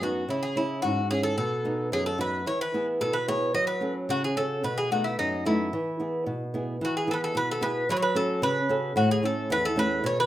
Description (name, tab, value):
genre	greek folk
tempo	111 BPM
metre	2/4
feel	straight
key	E major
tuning	A4 = 435 Hz
part	Greek bouzouki	melody	0.0-10.3 s	D#4 to D#5	-27 LUFS	left 1 dB	none
part	flamenco guitar	accompaniment	0.0-10.3 s	E2 to A4	-27 LUFS	right 1 dB	none
room	wet small room reverb, RT60 0.5 s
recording	rough home demo mix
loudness	-24 LUFS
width	side -13 dB against mid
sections	0.0-6.8 A section; 6.8-10.3 B section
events	none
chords	0.3 C#m; 1.4 B; 2.5 E; 3.5 F#m; 4.6 B7; 5.7 E; 7.9 F#m; 9.0 A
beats	| 0.28 0.82 | 1.37 1.91 | 2.46 3.00 | 3.55 4.09 | 4.63 5.18 | 5.72 6.26 | 6.80 7.34 | 7.88 8.42 | 8.96 9.50 | 10.04